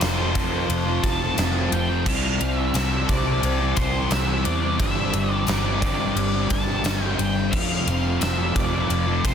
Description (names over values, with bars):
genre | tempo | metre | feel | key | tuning
rock, shoegaze and dream pop | 88 BPM | 4/4 | straight | C major | A4 = 439 Hz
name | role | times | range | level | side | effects
octave-fuzz lead guitar | melody | 0.0-9.3 s | C5 to A5 | -29 LUFS | equal | distortion, digital delay
ethereal airy pad | sustained chords | 0.0-9.3 s | E3 to A5 | -35 LUFS | right 1 dB | ensemble chorus, built-in reverb, phaser
crunchy overdriven guitar | riff | 0.0-9.3 s | F2 to G4 | -29 LUFS | right 10 dB | reverse reverb
crunchy overdriven guitar | riff | 0.0-9.3 s | F2 to C4 | -29 LUFS | left 1 dB | phaser
thick fuzz guitar | riff | 0.0-9.3 s | F2 to C4 | -29 LUFS | left 9 dB | distortion, analog chorus
vintage muted fingered electric bass | bass | 0.0-9.3 s | F1 to E2 | -26 LUFS | equal | none
gated 80s drum kit | drums | 0.0-9.3 s | crash cymbal, kick drum, ride cymbal, snare drum | -26 LUFS | equal | none
tambourine | percussion | 0.0-8.4 s | none | -39 LUFS | left 5 dB | none
room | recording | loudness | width
light reverb, small room ambience | dense, heavily limited modern master | -20 LUFS | side -8 dB against mid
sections
0.0-9.3 A section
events
none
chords
0.0 F; 2.1 C6; 4.8 Gsus4; 7.5 F